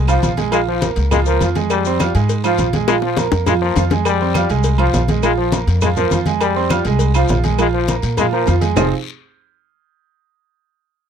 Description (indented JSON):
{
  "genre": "latin, salsa",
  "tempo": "204 BPM",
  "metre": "4/4",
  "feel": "straight",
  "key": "F minor",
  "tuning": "A4 = 441 Hz",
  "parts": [
    { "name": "bright upright piano", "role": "accompaniment", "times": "0.0-8.9 s", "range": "F3 to F6", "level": "-20 LUFS", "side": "right 14 dB", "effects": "none" },
    { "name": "upright bass", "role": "bass", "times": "0.0-8.9 s", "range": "F1 to Bb2", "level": "-18 LUFS", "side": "left 1 dB", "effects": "none" },
    { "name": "brilliant trombone", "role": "second line", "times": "0.1-8.9 s", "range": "F3 to Ab3", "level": "-20 LUFS", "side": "left 14 dB", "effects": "none" },
    { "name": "agogo bells and timbales", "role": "percussion", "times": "0.1-8.8 s", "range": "none", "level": "-28 LUFS", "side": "right 4 dB", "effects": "none" },
    { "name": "claves", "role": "percussion", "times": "0.1-8.8 s", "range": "none", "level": "-29 LUFS", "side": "right 24 dB", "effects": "none" },
    { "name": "congas", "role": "percussion", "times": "0.1-8.8 s", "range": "none", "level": "-22 LUFS", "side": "left 1 dB", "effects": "none" },
    { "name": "cowbell and bongos", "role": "percussion", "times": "0.1-8.8 s", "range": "none", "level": "-25 LUFS", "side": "left 8 dB", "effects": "none" },
    { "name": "maracas", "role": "percussion", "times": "0.1-8.8 s", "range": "none", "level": "-33 LUFS", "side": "left 29 dB", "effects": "none" },
    { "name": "guiro", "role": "percussion", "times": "0.2-8.8 s", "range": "none", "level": "-35 LUFS", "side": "left 14 dB", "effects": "none" }
  ],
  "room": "little or no reverb",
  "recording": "dry, close 1970s-style studio recording",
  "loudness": "-14 LUFS",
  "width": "side -8 dB against mid",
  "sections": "0.0-8.8 A section; 8.8-9.9 B section",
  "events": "drum fill 2.9-4.1",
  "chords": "0.0 Fm; 0.5 Bbm7; 1.7 Fm; 2.9 Bb5; 4.1 Fm; 5.2 Bb5; 6.4 Fm; 7.6 Bb5; 8.8 Fm7"
}